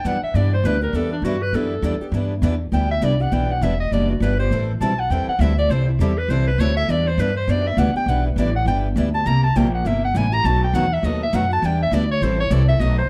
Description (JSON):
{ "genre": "acoustic string swing (jazz manouche)", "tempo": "202 BPM", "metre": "4/4", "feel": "swing 59% on 8ths", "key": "E minor", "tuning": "A4 = 440 Hz", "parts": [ { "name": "bright clarinet", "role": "melody", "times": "0.0-13.1 s", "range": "D4 to Bb5", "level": "-25 LUFS", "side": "equal", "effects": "slapback echo, plate reverb" }, { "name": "upright bass", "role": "bass", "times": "0.0-13.1 s", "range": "E1 to G2", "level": "-22 LUFS", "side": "equal", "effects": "none" }, { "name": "picked steel-string acoustic guitar", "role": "accompaniment", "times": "0.1-13.0 s", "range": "B2 to A4", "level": "-29 LUFS", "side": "equal", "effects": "none" }, { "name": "picked steel-string acoustic guitar", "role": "accompaniment", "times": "0.1-13.0 s", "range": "B2 to B4", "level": "-32 LUFS", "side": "equal", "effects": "none" } ], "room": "light reverb", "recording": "dark, warm production", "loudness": "-20 LUFS", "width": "mono", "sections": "0.0-13.1 A section", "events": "clarinet solo 0.0-13.1", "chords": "0.0 Em9; 4.5 Am9; 6.9 Em9; 9.3 C7; 10.4 B7; 11.6 Em7; 12.2 Am7", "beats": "0.05 0.35 0.65 | 0.94 1.24 1.54 1.83 | 2.13 2.43 2.73 3.02 | 3.32 3.62 3.92 4.22 | 4.51 4.81 5.11 5.41 | 5.71 6.00 6.30 6.60 | 6.89 7.19 7.49 7.79 | 8.08 8.38 8.67 8.97 | 9.27 9.56 9.86 10.15 | 10.45 10.74 11.04 11.33 | 11.63 11.92 12.22 12.51 | 12.81" }